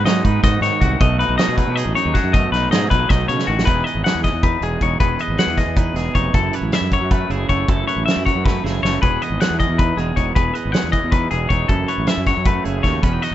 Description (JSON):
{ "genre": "math rock and midwest emo", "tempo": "314 BPM (eighths)", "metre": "7/8", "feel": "straight", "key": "E major", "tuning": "A4 = 440 Hz", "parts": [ { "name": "twangy electric guitar", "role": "accompaniment", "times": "0.0-13.3 s", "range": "E2 to B4", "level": "-24 LUFS", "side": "right 8 dB", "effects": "none" }, { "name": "clean electric guitar", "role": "arpeggios", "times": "0.0-13.3 s", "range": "F#4 to F#5", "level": "-21 LUFS", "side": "left 7 dB", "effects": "none" }, { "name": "fuzz fingered electric bass", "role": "bass", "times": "0.0-13.3 s", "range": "E1 to F#3", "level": "-22 LUFS", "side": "equal", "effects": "overdrive" }, { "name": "loose indie drum kit", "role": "drums", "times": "0.1-13.3 s", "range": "hi-hat, kick drum, snare drum", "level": "-20 LUFS", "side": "equal", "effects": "none" } ], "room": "little or no reverb", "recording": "rough home demo mix, nothing above 7.7 kHz", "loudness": "-16 LUFS", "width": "side -12 dB against mid", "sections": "0.0-3.7 A section; 3.7-13.3 B section", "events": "drum fill 3.4, 8.4-9.0", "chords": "0.0 G#m7; 1.0 B7; 3.7 Emaj9; 6.3 F#m9; 9.0 Emaj9; 11.7 F#m9" }